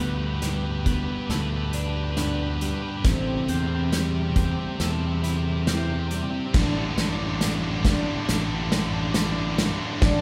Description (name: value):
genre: post-rock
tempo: 69 BPM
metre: 4/4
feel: straight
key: A minor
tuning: A4 = 439 Hz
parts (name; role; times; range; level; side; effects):
- handpan; arpeggios; 0.0-10.2 s; B3 to E4; -35 LUFS; equal; none
- twelve-string electric guitar; arpeggios; 0.0-6.5 s; A2 to A4; -36 LUFS; equal; none
- thick fuzz guitar; riff; 0.0-10.2 s; C4 to B4; -33 LUFS; equal; distortion
- fuzz fingered electric bass; bass; 0.0-10.2 s; A1 to E2; -30 LUFS; equal; overdrive
- loose indie drum kit; drums; 0.4-10.2 s; crash cymbal, hi-hat, kick drum, snare drum; -28 LUFS; equal; none
- tight distorted guitar; riff; 6.5-10.2 s; A2 to D3; -33 LUFS; equal; distortion
room: wet recital hall reverb, RT60 1.5 s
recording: recorded in a church or concert hall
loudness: -25 LUFS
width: mono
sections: 0.0-10.2 A section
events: build-up 0.0-10.2; drum fill 0.0-10.2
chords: 0.0 Gadd9; 3.1 Am7; 6.5 Dsus4/A